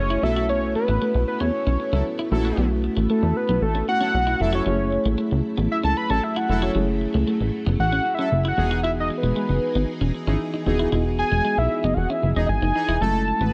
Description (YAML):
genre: funk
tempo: 115 BPM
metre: 4/4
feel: straight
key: F# dorian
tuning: A4 = 440 Hz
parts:
  - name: fat analog lead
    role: melody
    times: 0.0-13.5 s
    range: A4 to B5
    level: -26 LUFS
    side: equal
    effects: chorus
  - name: mellow tine electric piano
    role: accompaniment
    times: 0.0-13.5 s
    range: G#3 to G#4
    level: -30 LUFS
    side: equal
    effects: none
  - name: string machine, full ensemble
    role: sustained chords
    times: 0.0-13.5 s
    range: E3 to D#5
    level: -37 LUFS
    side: equal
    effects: phaser, ensemble chorus
  - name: plucky analog bass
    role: bass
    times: 0.0-13.5 s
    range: D#1 to E2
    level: -25 LUFS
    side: equal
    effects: none
  - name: clean electric guitar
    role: riff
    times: 0.1-13.5 s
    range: F#3 to F#4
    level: -31 LUFS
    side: equal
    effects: lush chorus
  - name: analog synth brass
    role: second line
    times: 0.2-13.5 s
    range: E3 to B4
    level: -33 LUFS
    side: equal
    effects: chorus
room: light reverb, digital ambience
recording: dark, warm production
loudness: -22 LUFS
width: mono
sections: 0.0-13.0 A section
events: analog synth lead solo 0.0-13.0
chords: 0.2 B7sus4; 4.7 F#m7; 8.6 Emaj7; 13.0 F#m7